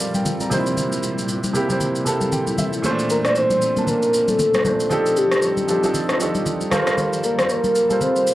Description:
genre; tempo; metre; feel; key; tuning
amapiano; 116 BPM; 4/4; swing 58% on 16ths; Bb major; A4 = 440 Hz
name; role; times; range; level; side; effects
warm baby grand piano; accompaniment; 0.0-8.3 s; Bb2 to Bb5; -22 LUFS; right 2 dB; cassette tape
granular cloud pad; sustained chords; 0.0-8.3 s; Bb2 to A5; -28 LUFS; left 1 dB; built-in reverb, cassette tape
electronic shaker and rim click; drums; 0.0-8.3 s; none; -26 LUFS; equal; cassette tape
congas; percussion; 0.1-8.2 s; none; -27 LUFS; left 2 dB; none
soft octave-layered synth lead; melody; 3.1-8.3 s; G4 to D5; -19 LUFS; equal; chorus, phaser, cassette tape, tape echo
room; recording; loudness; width
moderate spring reverb, RT60 1.4 s; home recording on cassette; -17 LUFS; side -15 dB against mid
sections
0.0-8.3 A section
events
grand piano fill 1.8-2.8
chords
0.0 Gm11; 0.5 C7; 2.8 Bbmaj9; 4.9 F13; 6.7 Gm11

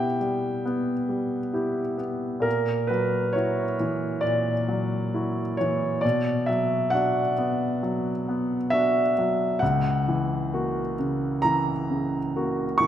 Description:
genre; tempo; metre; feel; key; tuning
classical, romantic nocturne for solo piano; 67 BPM; 4/4; rubato; unclear; A4 = 440 Hz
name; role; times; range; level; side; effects
clear grand piano; solo; 0.0-12.9 s; C#2 to C#6; -23 LUFS; equal; none
room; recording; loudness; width
wet concert hall reverb, RT60 1.9 s; none; -23 LUFS; side -10 dB against mid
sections
0.0-12.9 A section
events
none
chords
0.0 Em/B; 2.5 F#7/A#; 6.0 Bm; 9.6 F#7/C#

